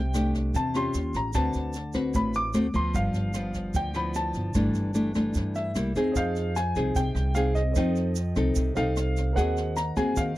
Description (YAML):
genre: bossa nova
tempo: 150 BPM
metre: 4/4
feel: straight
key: A minor, F minor from 6.2 s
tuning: A4 = 441 Hz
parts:
  - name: warm baby grand piano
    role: melody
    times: 0.0-10.4 s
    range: Eb5 to D6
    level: -32 LUFS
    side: left 1 dB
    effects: none
  - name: nylon-string guitar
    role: accompaniment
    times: 0.0-10.4 s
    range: G2 to B4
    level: -27 LUFS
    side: left 1 dB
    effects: none
  - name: upright bass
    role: bass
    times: 0.0-10.4 s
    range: G1 to G2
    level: -29 LUFS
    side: right 1 dB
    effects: none
  - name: jazz brush drum kit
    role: drums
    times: 0.1-10.3 s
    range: kick drum, rim click, snare drum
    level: -34 LUFS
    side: equal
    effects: none
  - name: egg shaker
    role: percussion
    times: 0.1-10.4 s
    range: none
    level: -43 LUFS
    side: right 9 dB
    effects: none
  - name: warm concert grand piano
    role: accompaniment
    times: 6.1-10.4 s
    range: Ab4 to G6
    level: -37 LUFS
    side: right 7 dB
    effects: none
room: little or no reverb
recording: dry, close 1970s-style studio recording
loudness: -24 LUFS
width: side -16 dB against mid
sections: 0.0-6.2 A section; 6.2-10.4 B section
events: none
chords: 0.0 Am7/C; 0.9 D#9; 1.3 D6; 2.5 D7; 2.9 G13; 4.5 A7sus4/G; 5.8 C7; 6.2 Fm7; 7.8 F7; 9.4 Ab7/Eb